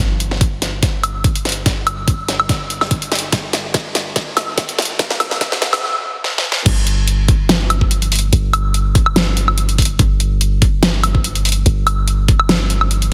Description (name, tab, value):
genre	future bass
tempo	144 BPM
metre	4/4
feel	swing 54% on 16ths, half-time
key	unclear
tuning	A4 = 440 Hz
part	long sustained 808-style bass	bass	0.0-13.1 s	G1	-20 LUFS	equal	sidechain pumping
part	dubstep drum kit	drums	0.2-13.1 s	crash cymbal, hi-hat, snare drum, woodblock	-19 LUFS	equal	high-pass filter on hats, high-pass filter on snare, high-pass filter on perc, high-pass filter on cymbals
part	electronic kick drum	drums	0.4-12.4 s	none	-18 LUFS	equal	none
room	moderate lush hall reverb, RT60 1.9 s, digital ambience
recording	heavily compressed radio sound, high-pass filter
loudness	-16 LUFS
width	mono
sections	0.0-6.7 A section; 6.7-13.1 B section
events	build-up 0.0-6.7; drum fill 0.0-5.8, 6.2-6.7; filter sweep 0.0-6.7; drop 6.7-13.1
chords	none